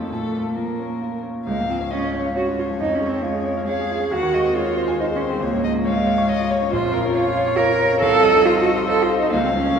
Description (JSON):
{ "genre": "quick classical-period movement for piano trio", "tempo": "137 BPM", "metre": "3/4", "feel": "straight", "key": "Db major", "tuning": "A4 = 440 Hz", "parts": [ { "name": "muted violin", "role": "melody", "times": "0.0-9.8 s", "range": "A4 to Gb5", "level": "-26 LUFS", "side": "left 4 dB", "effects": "none" }, { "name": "muted cello", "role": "second line", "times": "0.0-9.8 s", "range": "Ab3 to Bb4", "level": "-20 LUFS", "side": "right 3 dB", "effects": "none" }, { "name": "clear grand piano", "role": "accompaniment", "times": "0.0-9.8 s", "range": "Bb1 to Db6", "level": "-24 LUFS", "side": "left 1 dB", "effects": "none" } ], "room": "wet church reverb, RT60 3.1 s", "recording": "recorded in a church or concert hall", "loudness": "-18 LUFS", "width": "side -6 dB against mid", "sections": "0.0-1.5 A section; 1.5-9.8 B section", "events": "none", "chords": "0.1 Bbm; 1.5 Db; 2.8 Db/F; 4.1 Ab7/Eb; 5.4 Db; 6.7 Bbm; 8.0 F7/C", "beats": "| 0.09 0.55 1.01 | 1.47 1.91 2.35 | 2.79 3.23 3.67 | 4.12 4.55 4.99 | 5.42 5.86 6.29 | 6.72 7.15 7.58 | 8.02 8.46 8.89 | 9.32 9.76" }